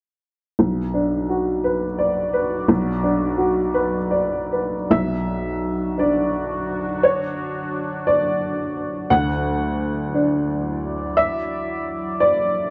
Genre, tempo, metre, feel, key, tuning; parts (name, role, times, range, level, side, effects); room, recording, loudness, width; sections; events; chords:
neoclassical piano and strings; 57 BPM (dotted quarters); 6/8; rubato; B minor; A4 = 440 Hz
warm upright piano; accompaniment; 0.6-12.7 s; B1 to F#5; -22 LUFS; equal
deep dark ambient pad; sustained chords; 1.8-12.7 s; F#3 to D5; -32 LUFS; equal; chorus, built-in reverb, plate reverb
wet small room reverb, RT60 0.5 s; dark, warm production; -22 LUFS; mono
0.6-4.9 A section; 4.9-12.7 B section
0.6 Bm; 9.1 Dadd9